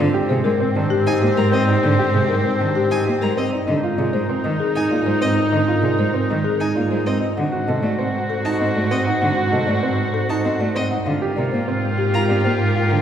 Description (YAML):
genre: classical, minimalist pattern music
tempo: 195 BPM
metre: 6/4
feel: straight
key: Ab lydian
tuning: A4 = 440 Hz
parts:
  - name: folk marimba with medium mallets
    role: melody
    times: 0.0-13.0 s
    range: G4 to F#5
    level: -25 LUFS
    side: left 6 dB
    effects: none
  - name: clear oboe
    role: second line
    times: 0.0-13.0 s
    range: C4 to F#4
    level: -26 LUFS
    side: right 1 dB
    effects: none
  - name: clear cello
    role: accompaniment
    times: 0.0-13.0 s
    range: C3 to C4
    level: -25 LUFS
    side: equal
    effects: none
  - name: warm studio violin section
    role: sustained chords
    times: 0.0-13.0 s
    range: Eb4 to C5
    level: -26 LUFS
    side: left 3 dB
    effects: none
  - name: clear grand piano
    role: arpeggios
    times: 0.0-13.0 s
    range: C4 to Bb4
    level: -24 LUFS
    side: right 3 dB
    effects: none
  - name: rich studio double bass section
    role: bass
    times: 0.0-13.0 s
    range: Ab2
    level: -23 LUFS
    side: right 2 dB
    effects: none
  - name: rich violin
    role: arpeggios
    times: 1.1-12.3 s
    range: Eb5 to Bb5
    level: -31 LUFS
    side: left 2 dB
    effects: none
room: wet scoring stage reverb, RT60 1.9 s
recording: heard from further back in the room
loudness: -17 LUFS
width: side -9 dB against mid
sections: 0.0-13.0 A section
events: none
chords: 0.0 Abmaj9; 3.7 Bb9sus4/Ab; 7.4 D7b9/Ab; 11.1 Gm7/Ab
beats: 0.29 0.60 0.91 1.21 1.52 | 1.83 2.14 2.44 2.75 3.06 3.37 | 3.67 3.98 4.29 4.60 4.91 5.21 | 5.52 5.83 6.14 6.44 6.75 7.06 | 7.37 7.67 7.98 8.29 8.60 8.91 | 9.21 9.52 9.83 10.14 10.44 10.75 | 11.06 11.37 11.68 11.98 12.29 12.60 | 12.91